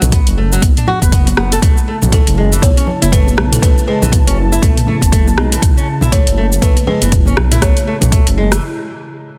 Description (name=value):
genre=afro house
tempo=120 BPM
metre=4/4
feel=swing 58% on 16ths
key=unclear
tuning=A4 = 443 Hz
part: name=dark detuned saw bass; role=bass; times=0.0-8.6 s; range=F#1 to B1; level=-18 LUFS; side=equal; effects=sidechain pumping
part: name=afro-pop drum kit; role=drums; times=0.0-8.6 s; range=hi-hat, rim click, shaker, toms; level=-20 LUFS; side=equal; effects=soft clipping on snare
part: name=congas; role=percussion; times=0.0-8.1 s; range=none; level=-24 LUFS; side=equal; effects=none
part: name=flamenco guitar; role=arpeggios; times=0.1-8.6 s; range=E3 to B4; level=-22 LUFS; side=equal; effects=sidechain pumping, tape echo
part: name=electronic kick drum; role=drums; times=0.1-8.2 s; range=none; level=-14 LUFS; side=equal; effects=none
part: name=warm analog pad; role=sustained chords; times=1.6-8.6 s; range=C#3 to A5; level=-26 LUFS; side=equal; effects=chorus, sidechain pumping
part: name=buzzing kalimba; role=melody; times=2.1-8.6 s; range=A4 to C#5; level=-25 LUFS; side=equal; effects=tape echo
room=light reverb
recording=dense, heavily limited modern master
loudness=-12 LUFS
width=mono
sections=0.0-9.4 A section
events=break 8.6-9.4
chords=0.0 B5; 1.6 A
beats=0.12 0.62 1.12 | 1.62 2.12 2.62 3.12 | 3.62 4.12 4.62 5.12 | 5.62 6.12 6.62 7.12 | 7.62 8.12